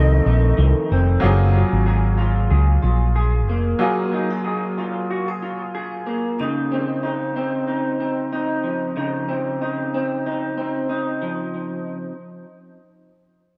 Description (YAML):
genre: indie pop, bedroom pop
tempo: 93 BPM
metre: 4/4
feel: swing 55% on 16ths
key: Db major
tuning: A4 = 444 Hz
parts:
  - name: breathy shakuhachi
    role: melody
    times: 0.0-0.6 s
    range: Eb5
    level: -31 LUFS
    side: equal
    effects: subtle chorus, analog delay
  - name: bright upright piano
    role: accompaniment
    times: 0.0-6.4 s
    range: Gb3 to Eb5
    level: -30 LUFS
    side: equal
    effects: cassette tape, analog delay
  - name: electric guitar through a small old amp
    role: accompaniment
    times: 0.0-12.1 s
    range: F2 to Ab4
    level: -25 LUFS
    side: equal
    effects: analog chorus, vibrato effect, analog delay
  - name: hollow-body short-scale fingered electric bass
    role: bass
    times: 0.0-3.7 s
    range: F1 to Db2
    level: -18 LUFS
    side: equal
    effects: none
room: small room ambience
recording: echo-heavy mix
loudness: -21 LUFS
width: mono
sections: 0.0-1.2 A section; 1.2-11.5 B section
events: none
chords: 0.0 F7; 1.2 Gbmaj9; 6.4 Dbmaj9